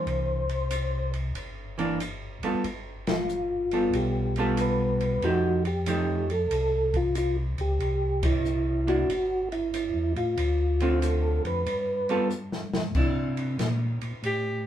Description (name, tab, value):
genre	soul jazz organ trio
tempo	93 BPM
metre	4/4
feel	swing 66% on 8ths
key	C major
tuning	A4 = 442 Hz
part	percussive tonewheel organ	melody	0.0-12.3 s	E4 to C5	-27 LUFS	equal	slow rotary speaker, chorus vibrato
part	archtop guitar, miked and amplified	accompaniment	0.0-14.7 s	D3 to A4	-28 LUFS	right 1 dB	none
part	mellow tonewheel organ	bass	0.0-14.7 s	G1 to C3	-29 LUFS	equal	chorus vibrato, slow rotary speaker
part	open jazz drum kit	drums	0.1-14.4 s	crash cymbal, hi-hat, kick drum, ride cymbal, snare drum	-34 LUFS	equal	none
part	clear alto saxophone	melody	14.3-14.6 s	G4	-28 LUFS	equal	none
room	wet studio reverb, RT60 0.5 s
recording	band playing live in one room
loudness	-24 LUFS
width	side -11 dB against mid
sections	0.0-13.0 A section; 13.0-14.7 B section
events	band accent 3.0-3.3, 8.1-8.4; drum fill 12.3-13.0; alto saxophone solo 13.0-14.7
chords	0.0 C9; 2.6 G9; 5.2 F9; 7.8 C; 10.4 Dm7; 11.7 G9; 13.0 C9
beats	| 0.07 0.72 1.36 2.00 | 2.65 3.29 3.94 4.58 | 5.22 5.87 6.51 7.16 | 7.80 8.45 9.09 9.73 | 10.38 11.02 11.67 12.31 | 12.96 13.60 14.24